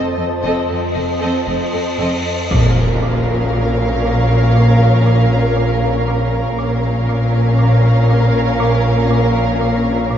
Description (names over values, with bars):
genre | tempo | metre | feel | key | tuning
cinematic, suspense film score | 59 BPM | 4/4 | straight | Bb minor | A4 = 440 Hz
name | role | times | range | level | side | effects
warm symphonic violin section | melody | 0.0-10.2 s | Eb5 to F5 | -25 LUFS | right 1 dB | none
warm symphonic violin section | second line | 0.0-10.2 s | A4 to Bb4 | -24 LUFS | right 1 dB | none
warm symphonic viola section | accompaniment | 0.0-10.2 s | C4 to Db4 | -25 LUFS | left 2 dB | none
flickering grainy texture | sustained chords | 0.0-10.2 s | Bb4 to Bb5 | -22 LUFS | left 1 dB | built-in reverb
marimba with hard mallets | riff | 0.0-10.2 s | F2 to F3 | -20 LUFS | right 1 dB | none
bowed-like drone | drone | 0.0-10.2 s | Bb1 to F2 | -25 LUFS | equal | none
cymbal swell and impact | sound effects | 0.9-6.6 s | none | -24 LUFS | equal | none
rich symphonic cello section | bass | 0.2-10.2 s | F2 to Bb2 | -19 LUFS | equal | none
warm studio double bass section | bass | 0.4-10.2 s | F1 to Bb1 | -21 LUFS | equal | none
timpani | percussion | 2.5-4.0 s | Bb2 | -24 LUFS | left 1 dB | none
room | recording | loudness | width
wet cathedral reverb, RT60 6.1 s | in a vast, echoing space, nothing above 7.6 kHz | -13 LUFS | side -9 dB against mid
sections
0.0-2.5 A section; 2.5-10.2 B section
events
cymbal swell 0.9-2.5; impact 2.5-6.6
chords
0.0 F7; 2.5 Bbm